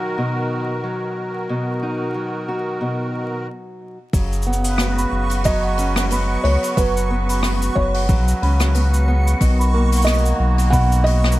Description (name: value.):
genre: folktronica.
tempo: 91 BPM.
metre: 4/4.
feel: swing 56% on 16ths.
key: F# major.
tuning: A4 = 441 Hz.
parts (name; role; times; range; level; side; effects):
musette accordion; sustained chords; 0.0-11.4 s; C#3 to B4; -28 LUFS; right 1 dB; vintage 12-bit sampler grit.
fingerpicked steel-string acoustic guitar; arpeggios; 0.0-11.4 s; B2 to F#4; -24 LUFS; equal; tape echo.
warm sub bass; bass; 4.1-11.4 s; F#1 to C#2; -18 LUFS; equal; tube saturation.
electronic kick drum; drums; 4.1-10.9 s; none; -18 LUFS; equal; none.
jazz brush drum kit; drums; 4.1-11.4 s; cabasa, hi-hat, rim click; -27 LUFS; left 1 dB; none.
backwards swelling texture; texture; 5.1-11.4 s; C#6; -30 LUFS; right 4 dB; built-in reverb.
large celesta; second line; 4.5-11.4 s; F#5 to B5; -28 LUFS; right 3 dB; ping-pong delay.
felt-muted upright piano; melody; 5.5-11.4 s; B4 to F#5; -24 LUFS; right 2 dB; vintage 12-bit sampler grit.
room: light reverb.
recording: vinyl crackle.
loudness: -17 LUFS.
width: side -16 dB against mid.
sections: 0.0-4.1 A section; 4.1-11.4 B section.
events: filter sweep on steel-string acoustic guitar 0.0-4.1; stop 3.5-4.1.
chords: 0.0 Bmaj7; 4.1 F#sus4; 9.4 Bmaj7.